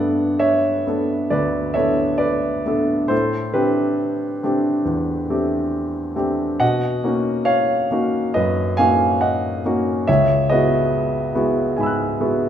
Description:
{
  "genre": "classical, impressionist solo piano",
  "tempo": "69 BPM",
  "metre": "4/4",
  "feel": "rubato",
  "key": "unclear",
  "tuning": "A4 = 440 Hz",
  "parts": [
    { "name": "warm grand piano", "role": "solo", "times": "0.0-12.5 s", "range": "C#2 to F#6", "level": "-17 LUFS", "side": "equal", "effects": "none" }
  ],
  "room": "wet recital hall reverb, RT60 1.6 s",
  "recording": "minimal, uncompressed stereo recording",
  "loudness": "-17 LUFS",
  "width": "side -9 dB against mid",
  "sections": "0.0-12.5 A section",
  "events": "none",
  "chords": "0.0 Gmaj9; 3.1 Am11; 6.6 Bmaj9; 10.1 C#m11"
}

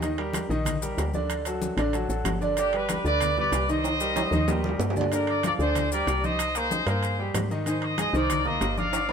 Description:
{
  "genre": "latin, salsa",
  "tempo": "189 BPM",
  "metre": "4/4",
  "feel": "straight",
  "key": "C minor",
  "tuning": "A4 = 440 Hz",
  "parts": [
    { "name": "bright baby grand piano", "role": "accompaniment", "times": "0.0-9.1 s", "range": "D3 to Eb6", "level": "-28 LUFS", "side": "right 1 dB", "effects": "none" },
    { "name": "woody FM bass", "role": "bass", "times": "0.0-9.1 s", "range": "G1 to Ab2", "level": "-30 LUFS", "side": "equal", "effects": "none" },
    { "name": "congas", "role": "percussion", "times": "0.0-9.1 s", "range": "none", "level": "-34 LUFS", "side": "left 2 dB", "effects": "none" },
    { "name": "maracas", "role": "percussion", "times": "0.0-9.1 s", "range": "none", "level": "-38 LUFS", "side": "left 8 dB", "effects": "none" },
    { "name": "timbales", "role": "percussion", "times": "0.0-9.1 s", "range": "none", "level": "-34 LUFS", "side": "right 3 dB", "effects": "none" },
    { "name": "bright trumpet section", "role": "melody", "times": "2.6-9.1 s", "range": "D4 to F5", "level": "-28 LUFS", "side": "left 1 dB", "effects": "none" }
  ],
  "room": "moderate plate reverb, RT60 2.5 s",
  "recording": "none",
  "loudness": "-23 LUFS",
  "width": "side -7 dB against mid",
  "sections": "0.0-5.1 A section; 5.1-9.1 B section",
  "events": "drum fill 3.8-5.1, 8.9",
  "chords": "0.0 Ebmaj7; 1.3 D; 2.6 G; 3.8 Cm7; 5.1 Gm7; 6.4 Cm7; 7.7 Abadd9"
}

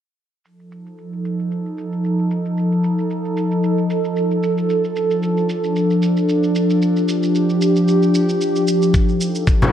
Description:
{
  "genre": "organic downtempo",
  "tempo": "113 BPM",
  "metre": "4/4",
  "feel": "swing 55% on 16ths",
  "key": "F mixolydian",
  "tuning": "A4 = 441 Hz",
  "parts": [
    { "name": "warbly tape-like pad", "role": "sustained chords", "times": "1.1-9.7 s", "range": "F3 to A4", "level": "-16 LUFS", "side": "equal", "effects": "chorus, built-in reverb, phaser, sidechain pumping" },
    { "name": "shaker", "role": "drums", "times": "0.5-9.7 s", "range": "none", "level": "-32 LUFS", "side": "right 3 dB", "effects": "low-pass filter on perc, studio reverb" },
    { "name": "electronic kick drum", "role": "drums", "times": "8.9-9.6 s", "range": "none", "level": "-15 LUFS", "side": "equal", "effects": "studio reverb" },
    { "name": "frame drum", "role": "percussion", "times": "9.6-9.7 s", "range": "none", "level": "-13 LUFS", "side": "left 1 dB", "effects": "none" }
  ],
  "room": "wet plate reverb, RT60 2.2 s",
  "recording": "bright 1980s-style digital production",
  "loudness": "-16 LUFS",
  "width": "side -10 dB against mid",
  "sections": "0.4-9.7 A section",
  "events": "filter sweep on ambient pad 0.4-9.7",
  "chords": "0.4 F7; 4.7 Dm/F; 8.9 F7"
}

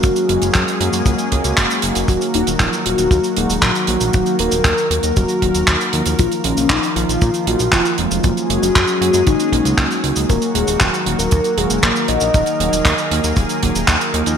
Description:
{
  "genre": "italo disco",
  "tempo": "117 BPM",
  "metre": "4/4",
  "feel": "straight",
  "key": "Eb minor",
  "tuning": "A4 = 438 Hz",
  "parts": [
    { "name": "soft octave-layered synth lead", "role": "melody", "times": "0.0-13.6 s", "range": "Db4 to Eb5", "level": "-19 LUFS", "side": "left 2 dB", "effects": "chorus, phaser, cassette tape, ping-pong delay" },
    { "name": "lush unison pad", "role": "sustained chords", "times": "0.0-14.4 s", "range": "Eb3 to Bb4", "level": "-22 LUFS", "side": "left 1 dB", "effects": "chorus" },
    { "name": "mellow synth brass", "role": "stabs", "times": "0.0-14.4 s", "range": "F3 to Ab4", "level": "-25 LUFS", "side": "right 3 dB", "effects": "chorus, phaser" },
    { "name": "fat analog bass", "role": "bass", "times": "0.0-14.4 s", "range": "Eb1 to Bb2", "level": "-22 LUFS", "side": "equal", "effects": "none" },
    { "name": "damped 70s drum kit", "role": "drums", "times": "0.0-14.4 s", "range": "cabasa, handclaps, hi-hat", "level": "-19 LUFS", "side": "right 1 dB", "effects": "small room ambience, gated reverb" },
    { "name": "kick drum", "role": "drums", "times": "0.0-14.0 s", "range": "none", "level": "-17 LUFS", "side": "equal", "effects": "small room ambience" }
  ],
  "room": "moderate lush hall reverb, RT60 1.7 s, studio reverb",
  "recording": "bright 1980s-style digital production",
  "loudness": "-14 LUFS",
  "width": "side -7 dB against mid",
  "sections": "0.0-14.4 A section",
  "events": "none",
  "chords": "0.0 Gbadd9; 2.1 Ebm; 6.2 Bbsus4; 8.2 Gbadd9; 10.3 Ebm"
}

